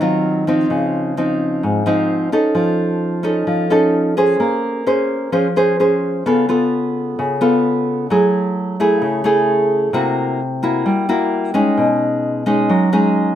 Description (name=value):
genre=bossa nova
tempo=130 BPM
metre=4/4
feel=straight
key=F# dorian from 8.1 s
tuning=A4 = 441 Hz
part: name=nylon-string guitar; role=solo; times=0.0-13.4 s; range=Ab2 to C5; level=-14 LUFS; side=equal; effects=none
room=moderate studio reverb, RT60 0.7 s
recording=none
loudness=-14 LUFS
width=side -10 dB against mid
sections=0.0-8.1 A section; 8.1-13.4 B section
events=none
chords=0.0 Ab6 (rootless); 0.7 Dbmaj9; 2.6 F7alt; 4.4 Bbm9; 6.2 Dbaug7; 8.1 F#m9; 9.9 C7#11; 11.8 B69